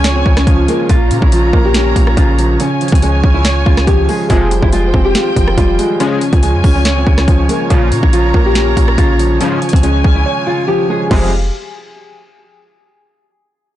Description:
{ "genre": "hip hop, trap", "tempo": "141 BPM", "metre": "4/4", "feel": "half-time", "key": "F minor", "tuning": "A4 = 441 Hz", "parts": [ { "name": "nylon-string guitar", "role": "melody", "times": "0.0-11.3 s", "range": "Bb3 to Ab4", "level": "-18 LUFS", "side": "left 3 dB", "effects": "low-pass filter, tape echo" }, { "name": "felt-muted upright piano", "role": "accompaniment", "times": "0.0-11.3 s", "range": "Bb2 to Db5", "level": "-18 LUFS", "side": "right 4 dB", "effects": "low-pass filter" }, { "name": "dark chamber string section", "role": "sustained chords", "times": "0.0-11.3 s", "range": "F4 to Bb5", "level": "-20 LUFS", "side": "equal", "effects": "none" }, { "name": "clean 808-style bass", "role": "bass", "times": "0.0-11.5 s", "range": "F1 to Bb2", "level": "-14 LUFS", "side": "equal", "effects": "none" }, { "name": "trap drum kit", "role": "drums", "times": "0.0-11.2 s", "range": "crash cymbal, hi-hat, kick drum, rim click, snare drum", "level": "-14 LUFS", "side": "equal", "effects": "overdrive" }, { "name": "sync-sweep polysynth", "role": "stabs", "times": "4.3-11.3 s", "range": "F2 to Ab3", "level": "-19 LUFS", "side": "left 2 dB", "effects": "chorus" } ], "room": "little or no reverb", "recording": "blown-out, overdriven recording, overdrive, nothing above 10.9 kHz", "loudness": "-10 LUFS", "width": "side -13 dB against mid", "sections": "0.0-11.1 A section; 11.1-12.8 B section", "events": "break 10.3-11.1", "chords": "0.0 Db; 0.9 Bbm; 2.6 Db; 4.3 Fmadd9; 6.0 Db; 7.7 Bbm; 9.4 Db; 11.1 Fmadd9" }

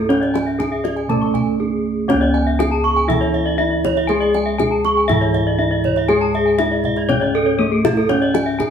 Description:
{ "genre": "Balinese gamelan", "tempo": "120 BPM", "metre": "4/4", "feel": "straight", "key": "C# pelog", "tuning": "A4 = 440 Hz", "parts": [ { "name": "gamelan-type bronze metallophone", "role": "melody", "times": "0.0-8.7 s", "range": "A3 to A4", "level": "-21 LUFS", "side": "left 1 dB", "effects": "none" }, { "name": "gamelan-type bronze metallophone", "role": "accompaniment", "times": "0.0-8.7 s", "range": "C#3 to A3", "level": "-25 LUFS", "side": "right 3 dB", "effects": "none" }, { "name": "gamelan-type bronze metallophone", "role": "arpeggios", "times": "0.0-8.5 s", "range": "E4 to C#6", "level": "-22 LUFS", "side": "right 5 dB", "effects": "none" }, { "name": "gamelan-type bossed gongs", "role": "bass", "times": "0.0-8.7 s", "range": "C#2 to G#4", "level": "-20 LUFS", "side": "equal", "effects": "none" }, { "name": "gamelan-type bronze metallophone", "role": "arpeggios", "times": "0.1-8.7 s", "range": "G#4 to C#6", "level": "-23 LUFS", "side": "left 4 dB", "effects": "none" }, { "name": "kendang", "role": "percussion", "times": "0.1-8.7 s", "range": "none", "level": "-24 LUFS", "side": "left 4 dB", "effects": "none" } ], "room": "moderate stone room reverb, RT60 1.1 s", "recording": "band playing live in one room, small room ambience", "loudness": "-15 LUFS", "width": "side -8 dB against mid", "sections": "0.0-8.7 A section", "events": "none", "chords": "none" }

